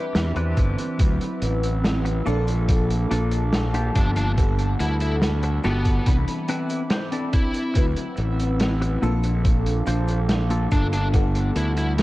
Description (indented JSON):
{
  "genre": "vaporwave",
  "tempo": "71 BPM",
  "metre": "4/4",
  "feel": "straight",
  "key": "unclear",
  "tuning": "A4 = 437 Hz",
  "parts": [
    { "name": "FM electric piano with soft pad layer", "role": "accompaniment", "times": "0.0-12.0 s", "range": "E3 to B5", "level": "-29 LUFS", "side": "equal", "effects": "phaser, analog chorus, dub echo" },
    { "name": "warbly tape-like pad", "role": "sustained chords", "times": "0.0-12.0 s", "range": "G3 to E6", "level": "-33 LUFS", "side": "left 1 dB", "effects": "chorus, built-in reverb" },
    { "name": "semi-hollow electric guitar", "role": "riff", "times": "0.0-12.0 s", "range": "Bb3 to G5", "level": "-31 LUFS", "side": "left 1 dB", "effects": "analog chorus, dub echo" },
    { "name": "fuzz fingered electric bass", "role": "bass", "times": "0.2-12.0 s", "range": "G1 to E2", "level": "-22 LUFS", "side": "equal", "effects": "overdrive" },
    { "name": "vintage drum kit", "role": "drums", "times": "0.2-12.0 s", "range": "cabasa, hi-hat, snare drum", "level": "-28 LUFS", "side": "equal", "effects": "none" },
    { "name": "electronic kick drum", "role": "drums", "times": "0.6-11.3 s", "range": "none", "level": "-21 LUFS", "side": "equal", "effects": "none" },
    { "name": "bluesy overdriven lead guitar", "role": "melody", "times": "4.0-11.9 s", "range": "B3 to E4", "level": "-32 LUFS", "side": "equal", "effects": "distortion, tape echo" }
  ],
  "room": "light reverb, studio reverb",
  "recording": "echo-heavy mix, cassette tape",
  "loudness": "-20 LUFS",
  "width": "side -18 dB against mid",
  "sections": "0.0-12.0 A section",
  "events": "clean electric guitar fill 6.1-7.8",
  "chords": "0.0 Cmaj9; 1.0 D13; 2.3 Bbmaj7; 4.4 Gmaj9; 6.1 Cmaj9; 7.8 D13; 9.0 Bbmaj7; 11.1 Gmaj9"
}